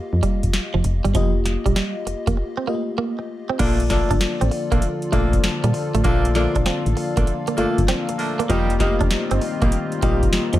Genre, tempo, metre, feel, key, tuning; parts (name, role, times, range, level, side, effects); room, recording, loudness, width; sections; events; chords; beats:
R&B, new jack swing; 98 BPM; 4/4; swing 67% on 16ths; Bb major; A4 = 440 Hz
FM electric piano with soft pad layer; accompaniment; 0.0-10.6 s; A3 to F5; -25 LUFS; left 4 dB; chorus, tremolo
solid FM bass; bass; 0.1-10.6 s; F1 to Bb2; -21 LUFS; equal
direct-recorded clean electric guitar; riff; 0.2-10.6 s; F3 to D4; -27 LUFS; right 6 dB; wide subtle chorus
booming analog drum machine; drums; 0.2-10.6 s; crash cymbal, hi-hat, kick drum, snare drum; -22 LUFS; equal
chorused pulse-width pad; sustained chords; 3.6-10.6 s; D3 to A4; -28 LUFS; left 1 dB
mellow horn section; stabs; 3.6-10.3 s; G3 to A4; -29 LUFS; right 3 dB
digital ambience; -18 LUFS; side -14 dB against mid
0.0-3.6 A section; 3.6-10.6 B section
break 2.4-3.6
0.0 F9sus4; 3.6 Bbmaj7; 8.5 F9sus4
0.54 | 1.15 1.76 2.37 2.98 | 3.60 4.21 4.82 5.43 | 6.04 6.66 7.27 7.88 | 8.49 9.11 9.72 10.33